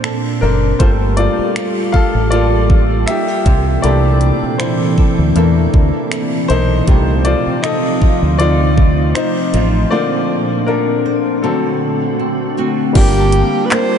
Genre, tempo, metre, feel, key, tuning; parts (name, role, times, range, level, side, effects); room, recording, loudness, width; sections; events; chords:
contemporary R&B; 79 BPM; 4/4; swing 54% on 16ths; G minor; A4 = 440 Hz
warm baby grand piano; accompaniment; 0.0-14.0 s; D3 to F5; -18 LUFS; left 4 dB
glassy FM pad; sustained chords; 0.0-14.0 s; Bb2 to A5; -18 LUFS; equal; ensemble chorus, built-in reverb
flamenco guitar; arpeggios; 0.0-14.0 s; C3 to C5; -22 LUFS; right 4 dB; wide subtle chorus, diffuse ambient delay
trap drum kit; drums; 0.0-13.9 s; crash cymbal, finger snaps, handclaps, hi-hat, kick drum; -16 LUFS; equal
deep dub fingered electric bass; bass; 0.4-13.4 s; F#1 to E2; -15 LUFS; equal
breathy alto saxophone; melody; 13.0-14.0 s; G4 to C5; -16 LUFS; right 3 dB; diffuse ambient delay
glassy synth bell; texture; 13.0-14.0 s; F5 to D6; -29 LUFS; right 3 dB; chorus, phaser, diffuse ambient delay
moderate huge ambient reverb, RT60 4.7 s; dreamy mix soaked in reverb, nothing above 10.8 kHz; -12 LUFS; side -8 dB against mid
0.0-13.0 A section; 13.0-14.0 B section
break 0.0-0.8, 9.9-13.0; grand piano solo 0.0-13.0
0.0 Bbmaj9; 0.8 Gm9; 3.5 C13; 6.9 F7/C; 9.9 Bbmaj9; 11.4 D7; 13.0 Gm9